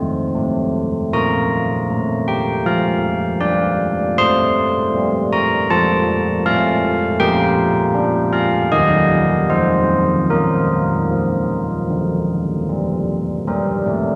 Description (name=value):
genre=classical, tune for church bells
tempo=78 BPM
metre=4/4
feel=straight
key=Bb major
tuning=A4 = 440 Hz
part: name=carillon bells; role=solo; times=0.0-14.2 s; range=D3 to C6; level=-18 LUFS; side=equal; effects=none
room=wet concert hall reverb, RT60 1.7 s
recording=none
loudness=-18 LUFS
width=mono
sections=0.0-13.5 A section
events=none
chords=0.0 F; 1.1 Bb; 4.2 F; 7.2 Bb; 8.7 Eb; 9.5 N.C.; 10.3 Bb; 13.5 Gm